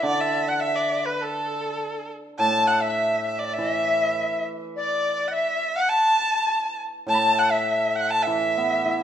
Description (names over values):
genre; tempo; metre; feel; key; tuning
chinese traditional, Chinese chamber ensemble; 102 BPM; 2/4; rubato; A zhi mode; A4 = 440 Hz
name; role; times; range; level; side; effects
rich erhu; melody; 0.0-9.0 s; A4 to A5; -24 LUFS; right 2 dB; none
bright reedy large dizi; second line; 0.0-9.0 s; A4 to B5; -24 LUFS; left 3 dB; none
hammered dulcimer; accompaniment; 0.0-9.0 s; A2 to E4; -29 LUFS; right 2 dB; none
room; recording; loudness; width
moderate recital hall reverb, RT60 1.4 s; minimal, uncompressed stereo recording; -21 LUFS; side -9 dB against mid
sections
0.0-2.4 A section; 2.4-9.0 B section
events
none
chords
none